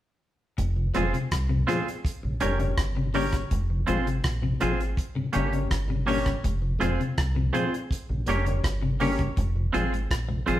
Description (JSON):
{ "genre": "roots reggae", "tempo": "82 BPM", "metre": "4/4", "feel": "straight", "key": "F minor", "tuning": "A4 = 440 Hz", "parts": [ { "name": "clean electric guitar", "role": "arpeggios", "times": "0.6-10.6 s", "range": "Ab2 to Db3", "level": "-33 LUFS", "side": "left 4 dB", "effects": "none" }, { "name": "deep dub fingered electric bass", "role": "bass", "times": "0.6-10.6 s", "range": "F1 to C2", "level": "-28 LUFS", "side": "equal", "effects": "none" }, { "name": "damped 70s drum kit", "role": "drums", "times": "0.6-10.6 s", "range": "hi-hat, kick drum, rim click", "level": "-30 LUFS", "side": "equal", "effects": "none" }, { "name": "mellow tonewheel organ", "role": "accompaniment", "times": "0.8-10.6 s", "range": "F2 to Db4", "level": "-32 LUFS", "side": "left 1 dB", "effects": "slow rotary speaker" }, { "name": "clean electric guitar", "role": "accompaniment", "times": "0.9-10.6 s", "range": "Bb3 to Db5", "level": "-29 LUFS", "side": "right 3 dB", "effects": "none" }, { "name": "dark upright piano", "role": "stabs", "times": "0.9-10.6 s", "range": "C4 to Db5", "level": "-33 LUFS", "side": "left 4 dB", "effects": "none" } ], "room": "wet stone room reverb, RT60 1.0 s", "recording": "band playing live in one room", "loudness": "-24 LUFS", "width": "side -13 dB against mid", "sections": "0.6-10.6 A section", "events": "none", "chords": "0.6 Fm; 2.0 Gdim; 3.5 Fm; 5.0 Gdim; 6.4 Fm; 7.9 Gdim; 9.4 Fm" }